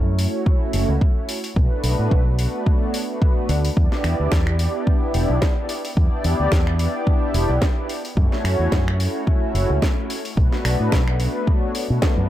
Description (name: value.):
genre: nu-disco, nu disco.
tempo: 109 BPM.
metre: 4/4.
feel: swing 56% on 16ths.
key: E dorian.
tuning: A4 = 440 Hz.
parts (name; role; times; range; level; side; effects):
fingered electric bass with an envelope filter; bass; 0.0-12.3 s; E1 to B2; -20 LUFS; equal; none.
warm analog pad; accompaniment; 0.2-12.3 s; A3 to D5; -24 LUFS; equal; analog chorus, tape echo.
house drum kit; drums; 0.2-12.1 s; finger snaps, hi-hat, snare drum; -28 LUFS; equal; none.
electronic kick drum; drums; 0.5-12.1 s; none; -19 LUFS; equal; none.
room: light reverb.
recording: echo-heavy mix.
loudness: -18 LUFS.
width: side -13 dB against mid.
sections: 0.0-12.3 A section.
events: none.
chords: 0.0 F#m7; 1.6 Bm7; 3.8 Em7; 7.9 F#m7; 10.4 Bm7.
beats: 0.47 1.01 | 1.57 2.12 2.67 3.22 | 3.77 4.32 4.87 5.42 | 5.97 6.52 7.07 7.62 | 8.17 8.72 9.27 9.82 | 10.37 10.92 11.47 12.03.